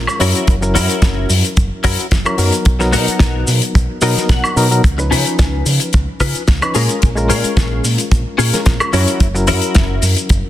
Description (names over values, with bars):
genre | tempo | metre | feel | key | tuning
nu-disco, nu disco | 110 BPM | 4/4 | swing 54% on 16ths | unclear | A4 = 440 Hz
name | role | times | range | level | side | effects
bright reed electric piano | accompaniment | 0.0-10.5 s | F3 to Db5 | -20 LUFS | left 1 dB | fast tremolo, sidechain pumping, ping-pong delay
fingered electric bass with an envelope filter | bass | 0.0-10.4 s | Gb1 to Db3 | -17 LUFS | equal | none
direct-recorded clean electric guitar | riff | 0.1-10.0 s | Cb4 to Bb5 | -20 LUFS | left 3 dB | analog chorus, ping-pong delay
damped 70s drum kit | drums | 0.1-10.4 s | cabasa, hi-hat, snare drum, woodblock | -19 LUFS | left 2 dB | studio reverb
kick drum | drums | 0.5-10.4 s | none | -13 LUFS | equal | studio reverb
room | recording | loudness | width
little or no reverb | dense, heavily limited modern master | -12 LUFS | side -13 dB against mid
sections
0.0-10.5 A section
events
clean electric guitar fill 3.8-4.8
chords
0.2 Gb7; 2.7 Cbmaj7; 4.8 Db9; 6.8 Bbm7; 8.9 Gb7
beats
| 0.48 1.02 1.57 2.12 | 2.66 3.21 3.75 4.30 | 4.84 5.39 5.93 6.48 | 7.02 7.57 8.12 8.66 | 9.21 9.75 10.30